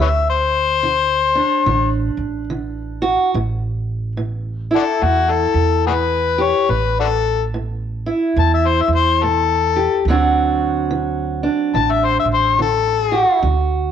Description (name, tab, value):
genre	acoustic country blues, solo or duo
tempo	72 BPM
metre	4/4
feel	swing 61% on 8ths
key	unclear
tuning	A4 = 440 Hz
part	overdriven harmonica	melody	0.0-13.4 s	D4 to A5	-16 LUFS	left 7 dB	none
part	fingerpicked steel-string acoustic guitar	accompaniment	0.0-13.9 s	A2 to G4	-20 LUFS	right 3 dB	none
part	upright bass	bass	0.0-13.9 s	A1 to E2	-21 LUFS	right 2 dB	none
room	moderate spring reverb, RT60 1.2 s, small room ambience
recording	none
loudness	-15 LUFS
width	side -8 dB against mid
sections	0.0-13.9 A section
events	none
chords	0.0 D7(no3); 3.3 A5; 10.1 D7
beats	0.83 1.67 2.50 | 3.34 4.18 5.02 5.86 | 6.70 7.54 8.38 9.22 | 10.06 10.90 11.74 12.58 | 13.42